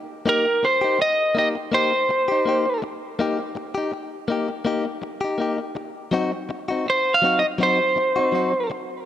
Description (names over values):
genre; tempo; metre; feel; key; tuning
blues; 82 BPM; 4/4; swing 55% on 16ths; unclear; A4 = 439 Hz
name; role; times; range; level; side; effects
lightly driven lead guitar; melody; 0.3-8.7 s; Bb4 to F5; -19 LUFS; right 1 dB; none
direct-recorded clean electric guitar; stabs; 0.3-8.7 s; Gb3 to G4; -25 LUFS; left 3 dB; spring reverb
room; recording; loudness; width
light reverb; none; -19 LUFS; side -11 dB against mid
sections
0.0-9.1 A section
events
none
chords
0.0 Cm7; 6.1 Ebm6/Gb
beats
| 0.26 0.99 1.73 2.46 | 3.19 3.93 4.67 5.40 | 6.14 6.87 7.61 8.34